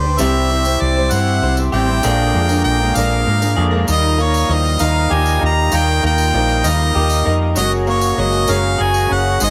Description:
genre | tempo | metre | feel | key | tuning
folk rock and heartland rock | 65 BPM (dotted quarters) | 6/8 | straight | Eb mixolydian from 3.9 s | A4 = 440 Hz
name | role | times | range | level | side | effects
bright harmonica | melody | 0.0-9.5 s | C5 to Bb5 | -21 LUFS | equal | tape echo
picked twelve-string acoustic guitar | accompaniment | 0.0-9.5 s | Bb2 to C5 | -25 LUFS | equal | lush chorus
accordion | sustained chords | 0.0-9.5 s | G3 to E6 | -30 LUFS | equal | light tremolo tuning
hollow-body short-scale fingered electric bass | bass | 0.0-9.5 s | Gb1 to Ab2 | -20 LUFS | equal | none
electric guitar through a small old amp | riff | 0.2-9.5 s | Ab2 to Ab4 | -23 LUFS | equal | spring reverb
tambourine | percussion | 0.2-9.5 s | none | -30 LUFS | equal | none
room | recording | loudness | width
little or no reverb | none | -16 LUFS | mono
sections
0.0-3.9 A section; 3.9-9.5 B section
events
none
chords
0.2 C; 2.0 Bb7; 3.9 Ebadd9; 7.6 Gbadd9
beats
| 0.20 1.12 | 2.04 2.96 | 3.88 4.80 | 5.72 6.64 | 7.57 8.49 | 9.41

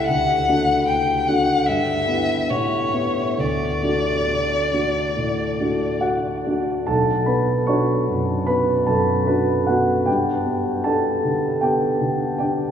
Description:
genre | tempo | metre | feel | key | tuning
classical, romantic duo for violin and grand piano | 67-79 BPM | 4/4 | rubato | unclear | A4 = 440 Hz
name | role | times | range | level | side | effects
rich violin | melody | 0.0-6.0 s | C#5 to G5 | -22 LUFS | left 2 dB | none
warm concert grand piano | accompaniment | 0.0-12.7 s | B1 to C#6 | -19 LUFS | equal | none
room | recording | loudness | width
wet cathedral reverb, RT60 6.7 s | recorded in a church or concert hall, small room ambience | -18 LUFS | side -8 dB against mid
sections
0.0-6.9 A section; 6.9-12.7 B section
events
none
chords
0.1 D; 1.7 Em/G; 2.5 A9; 3.4 D; 6.9 Bm; 10.1 G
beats
| 0.07 0.86 1.67 2.50 | 3.38 4.27 5.15 6.02 | 6.88 7.68 8.48 9.28 | 10.07 10.85 11.63 12.40

